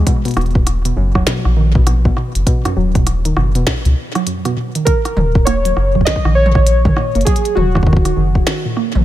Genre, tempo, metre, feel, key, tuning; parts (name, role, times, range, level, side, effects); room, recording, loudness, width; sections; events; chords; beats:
IDM; 100 BPM; 4/4; swing 62% on 16ths; Eb minor; A4 = 439 Hz
warbly dusty pluck; arpeggios; 0.0-9.0 s; F#2 to Bb3; -19 LUFS; right 2 dB; chorus, digital delay
round analog bass; bass; 0.0-9.0 s; D#1 to C#2; -15 LUFS; equal
electronic kick drum; drums; 0.1-8.4 s; -15 LUFS; equal
glitchy drum kit; drums; 0.1-9.0 s; hi-hat, rim click, snare drum, toms; -22 LUFS; equal; digital delay
warbly lo-fi synth keys; melody; 4.9-8.7 s; Gb4 to Eb5; -18 LUFS; equal; chorus, ping-pong delay
little or no reverb; -12 LUFS; side -13 dB against mid
0.0-9.0 A section
0.1 B/D#; 4.9 Ebm7
| 0.07 0.67 1.27 1.87 | 2.47 3.07 3.67 4.27 | 4.87 5.47 6.07 6.67 | 7.27 7.87 8.47